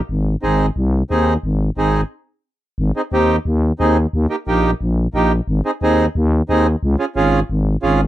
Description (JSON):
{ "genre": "latin, cumbia", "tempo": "178 BPM", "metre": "4/4", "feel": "straight", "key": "Ab major", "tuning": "A4 = 439 Hz", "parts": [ { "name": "growling FM bass", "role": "bass", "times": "0.1-8.1 s", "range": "Ab1 to Eb2", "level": "-17 LUFS", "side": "left 1 dB", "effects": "none" }, { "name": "accordion", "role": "accompaniment", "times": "0.4-8.0 s", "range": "Bb3 to Ab4", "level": "-17 LUFS", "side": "right 2 dB", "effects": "none" } ], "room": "little or no reverb", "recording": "dry, close 1970s-style studio recording", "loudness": "-15 LUFS", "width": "side -14 dB against mid", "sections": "0.0-2.8 A section; 2.8-8.1 B section", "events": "stop 2.1-2.8", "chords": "0.1 Ab; 4.1 Eb; 5.5 Ab; 6.8 Db" }